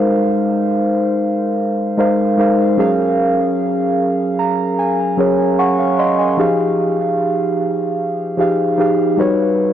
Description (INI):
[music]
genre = R&B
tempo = 75 BPM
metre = 4/4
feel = straight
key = unclear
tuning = A4 = 435 Hz
[part]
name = muted felt-like synth keys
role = solo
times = 0.0-9.7 s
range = F3 to Db6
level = -14 LUFS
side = equal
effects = chorus, tape echo
[sound]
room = light reverb, digital ambience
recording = dry, gritty hardware recording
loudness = -14 LUFS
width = side -10 dB against mid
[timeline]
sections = 0.0-9.7 A section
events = synth keys fill 4.0-6.4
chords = 0.0 Ab69; 2.8 Gbmaj9; 6.4 Fm9; 9.2 Eb7alt/G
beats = 0.78 1.58 2.38 | 3.18 3.98 4.78 5.58 | 6.38 7.18 7.98 8.78 | 9.58